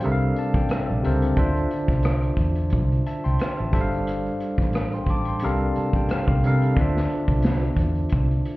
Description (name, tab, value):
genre	R&B, neo-soul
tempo	89 BPM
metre	4/4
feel	swing 54% on 16ths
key	D minor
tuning	A4 = 440 Hz
part	barky tine electric piano	accompaniment	0.0-8.6 s	C3 to D6	-25 LUFS	equal	medium stereo tremolo
part	vintage muted fingered electric bass	bass	0.0-8.4 s	G1 to C3	-23 LUFS	equal	none
part	unplugged drum kit	drums	0.0-8.6 s	hi-hat, kick drum, rim click, snare drum	-25 LUFS	equal	none
room	light reverb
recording	heard muffled through a wall, stone room reverb, EQ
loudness	-20 LUFS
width	side -19 dB against mid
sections	0.0-8.6 A section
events	tine electric piano fill 0.0-1.4, 5.4-6.8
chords	0.0 C13sus4; 1.4 Dm9; 3.7 G9sus4; 5.4 C13sus4; 6.8 Dm9